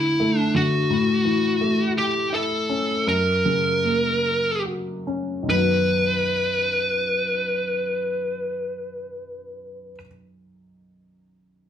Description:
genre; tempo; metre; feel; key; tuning
pop; 45-57 BPM (dotted quarters); 6/8; straight; unclear; A4 = 439 Hz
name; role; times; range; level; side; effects
fuzz lead guitar; melody; 0.0-10.0 s; E4 to B4; -22 LUFS; equal; distortion
warm baby grand piano; accompaniment; 0.0-11.7 s; B1 to F#4; -24 LUFS; left 1 dB; none
room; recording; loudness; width
wet studio reverb, RT60 0.8 s; band playing live in one room; -20 LUFS; side -9 dB against mid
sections
0.0-5.5 A section; 5.5-10.8 B section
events
slowing down 0.9-5.5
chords
0.0 Dsus2; 0.9 A; 3.1 F#; 5.5 B

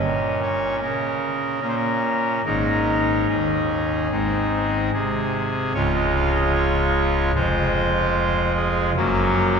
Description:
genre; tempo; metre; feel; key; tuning
classical, chorale-style piece for pipe organ; 74 BPM; 4/4; rubato; Db major; A4 = 440 Hz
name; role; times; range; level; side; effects
pipe organ, trumpet; solo; 0.0-9.6 s; Db1 to F5; -19 LUFS; equal; none
room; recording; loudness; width
wet cathedral reverb, RT60 4.7 s; heard from further back in the room; -19 LUFS; side -6 dB against mid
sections
0.0-5.8 A section; 5.8-9.6 B section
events
none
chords
0.0 Gdim (rootless); 2.4 Absus4; 4.1 Ab; 5.8 Db; 7.4 Fm; 9.0 Gb

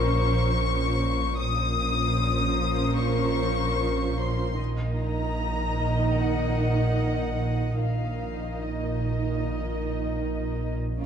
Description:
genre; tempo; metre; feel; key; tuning
cinematic; free time; none; none; unclear; A4 = 440 Hz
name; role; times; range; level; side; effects
warm chamber violin section; melody; 0.0-11.1 s; Bb4 to Eb6; -31 LUFS; left 5 dB; none
dark studio violin section; second line; 0.0-11.1 s; F4 to Eb5; -33 LUFS; left 3 dB; none
warm chamber viola section; accompaniment; 0.0-11.1 s; Eb3 to Eb4; -31 LUFS; right 4 dB; none
dark chamber cello section; bass; 0.0-11.1 s; Bb2; -32 LUFS; right 1 dB; none
warm chamber double bass section; bass; 0.0-11.1 s; Bb1; -30 LUFS; right 1 dB; none
metallic inharmonic drone; drone; 0.0-11.1 s; Bb1; -31 LUFS; equal; chorus, built-in reverb
felt-muted upright piano; texture; 0.0-4.6 s; none; barely audible; none; none
room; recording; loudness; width
moderate scoring stage reverb, RT60 1.5 s; dark, warm production; -24 LUFS; side -8 dB against mid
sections
0.0-11.0 A section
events
none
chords
0.0 Bbmadd9; 4.6 Ebm/Bb

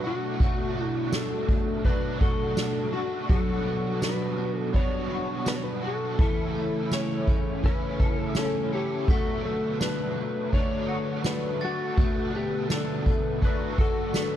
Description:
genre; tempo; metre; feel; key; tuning
dream pop; 83 BPM; 4/4; straight; B minor; A4 = 440 Hz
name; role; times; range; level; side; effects
clean lap steel guitar; melody; 0.0-14.4 s; F#4 to C#5; -32 LUFS; left 3 dB; digital delay, plate reverb
cranked stack guitar; accompaniment; 0.0-14.4 s; A2 to F#4; -34 LUFS; right 4 dB; overdrive, tremolo, ensemble chorus, plate reverb
hollow soft pad; sustained chords; 0.0-14.4 s; B2 to B4; -33 LUFS; right 2 dB; chorus, plate reverb
clean electric guitar; arpeggios; 0.0-14.4 s; E3 to A4; -33 LUFS; left 4 dB; ensemble chorus, digital delay, plate reverb
soft-mallet drum kit; drums; 0.0-14.3 s; kick drum, ride cymbal, snare drum, tambourine; -27 LUFS; equal; none
glockenspiel with hard plastic mallets; texture; 9.1-14.4 s; A6 to B6; -43 LUFS; right 4 dB; digital delay
room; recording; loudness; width
light reverb; dark, warm production; -24 LUFS; side -11 dB against mid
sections
0.0-14.4 A section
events
none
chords
0.0 Bm7; 3.3 Gmaj7/B; 6.2 A; 9.1 Bm7

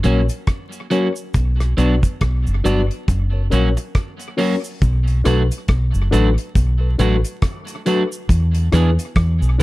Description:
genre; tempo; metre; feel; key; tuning
roots reggae; 69 BPM; 4/4; swing 58% on 16ths; B dorian from 4.8 s; A4 = 441 Hz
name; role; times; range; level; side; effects
electric guitar at the edge of break-up; accompaniment; 0.0-9.6 s; E3 to G#4; -23 LUFS; right 2 dB; tape echo
mellow reed electric piano; stabs; 0.0-9.6 s; C#4 to D5; -24 LUFS; left 5 dB; fast tremolo
damped 70s drum kit; drums; 0.0-9.6 s; hi-hat, kick drum, rim click; -20 LUFS; equal; none
cabasa; percussion; 0.0-9.6 s; none; -38 LUFS; right 3 dB; none
deep dub fingered electric bass; bass; 0.1-9.6 s; F#1 to E2; -16 LUFS; equal; none
room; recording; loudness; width
studio reverb; dark, warm production, vinyl crackle; -16 LUFS; side -18 dB against mid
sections
0.0-4.8 A section; 4.8-9.6 B section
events
none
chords
0.0 F#; 1.3 Bm; 3.1 F#; 4.8 Bm7; 8.3 E7

